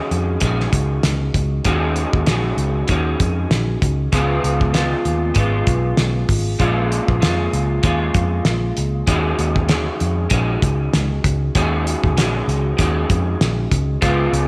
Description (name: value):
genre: indie pop, bedroom pop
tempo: 97 BPM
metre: 4/4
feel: swing 55% on 16ths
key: Eb minor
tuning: A4 = 441 Hz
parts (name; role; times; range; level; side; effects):
- electric guitar through a small old amp; accompaniment; 0.0-14.5 s; Bb2 to Gb4; -24 LUFS; equal; analog chorus, warbly pitch drift
- vintage muted picked electric bass; bass; 0.1-14.5 s; Ab1 to F2; -22 LUFS; equal; tube saturation
- cloth-damped thuddy drum kit; drums; 0.1-14.5 s; hi-hat, kick drum, snare drum; -23 LUFS; equal; none
room: light reverb, small room ambience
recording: none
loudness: -19 LUFS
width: mono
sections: 0.0-14.5 A section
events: none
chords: 0.0 Ebm11; 4.1 Db7; 6.6 Bbm7; 9.1 Ebm11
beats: 0.43 1.04 | 1.66 2.28 2.90 3.52 | 4.13 4.75 5.37 5.99 | 6.61 7.22 7.84 8.46 | 9.08 9.70 10.31 10.93 | 11.55 12.17 12.79 13.40 | 14.02